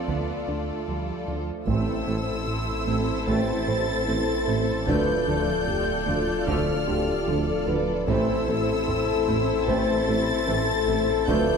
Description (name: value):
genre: cinematic, hybrid orchestral and electronic film score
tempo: 75 BPM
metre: 4/4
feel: straight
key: unclear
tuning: A4 = 439 Hz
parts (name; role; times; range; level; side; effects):
- clear symphonic violin section; melody; 0.0-11.6 s; D5 to A6; -32 LUFS; left 2 dB; none
- warm symphonic violin section; second line; 0.0-11.6 s; F4 to D5; -32 LUFS; left 2 dB; none
- rich symphonic viola section; accompaniment; 0.0-11.6 s; E3 to F4; -34 LUFS; right 1 dB; none
- brassy analog pad; sustained chords; 0.0-11.6 s; A3 to D5; -31 LUFS; equal; chorus
- thumb-piano-like synth pluck; arpeggios; 0.1-11.5 s; D3 to A4; -34 LUFS; right 2 dB; chorus, ping-pong delay
- round analog bass; riff; 0.1-11.5 s; D2 to A2; -33 LUFS; right 2 dB; none
- warm symphonic cello section; bass; 0.1-11.4 s; A2 to D3; -34 LUFS; right 4 dB; none
- solo taiko drums; drums; 0.1-11.6 s; none; -34 LUFS; equal; none
- bright trombone section; sustained chords; 1.7-11.6 s; E3 to D4; -36 LUFS; right 4 dB; none
- detuned saw bass; bass; 1.7-11.6 s; D1 to A1; -34 LUFS; equal; none
- mellow tuba; bass; 1.7-11.4 s; A1 to D2; -32 LUFS; right 2 dB; none
- rich symphonic double bass section; bass; 1.7-11.4 s; A1 to D2; -36 LUFS; right 4 dB; none
- clear French horn section; sustained chords; 3.3-11.6 s; F4 to C5; -27 LUFS; left 5 dB; none
room: wet scoring stage reverb, RT60 1.5 s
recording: none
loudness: -22 LUFS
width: side -6 dB against mid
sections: 0.0-1.7 A section; 1.7-11.6 A section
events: none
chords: 0.0 Dm; 1.7 Am; 4.9 Dm; 8.1 Am